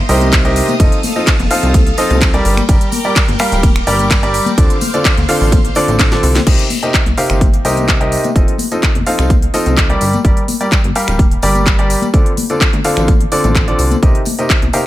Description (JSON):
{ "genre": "piano house", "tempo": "127 BPM", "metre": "4/4", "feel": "straight", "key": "C dorian", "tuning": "A4 = 439 Hz", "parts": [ { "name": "string machine, violins", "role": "sustained chords", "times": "0.0-6.4 s", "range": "A4 to Eb6", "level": "-24 LUFS", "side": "right 1 dB", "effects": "ensemble chorus, sidechain pumping" }, { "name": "plucky analog bass", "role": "bass", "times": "0.0-14.7 s", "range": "D1 to D2", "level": "-16 LUFS", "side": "equal", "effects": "sidechain pumping" }, { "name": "clear baby grand piano", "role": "riff", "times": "0.1-14.9 s", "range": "C3 to F5", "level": "-16 LUFS", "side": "equal", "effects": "sidechain pumping, dub echo" }, { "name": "house drum kit", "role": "drums", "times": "0.1-14.8 s", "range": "crash cymbal, finger snaps, handclaps, hi-hat, ride cymbal, snare drum", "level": "-19 LUFS", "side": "equal", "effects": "none" }, { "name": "tambourine and congas", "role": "percussion", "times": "0.1-14.8 s", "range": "none", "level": "-23 LUFS", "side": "left 6 dB", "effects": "none" }, { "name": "electronic kick drum", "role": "drums", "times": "0.3-14.6 s", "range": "none", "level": "-13 LUFS", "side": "equal", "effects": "none" } ], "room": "little or no reverb", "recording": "none", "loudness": "-10 LUFS", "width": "side -15 dB against mid", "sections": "0.0-6.5 A section; 6.5-14.9 B section", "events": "drop 0.0-6.5; drum fill 6.0-6.5", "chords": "0.0 Cm7; 0.8 F7; 2.5 Gm; 4.6 Dm7; 6.5 Cm7; 8.4 F7; 10.0 Gm; 12.1 Dm7; 14.0 Cm7" }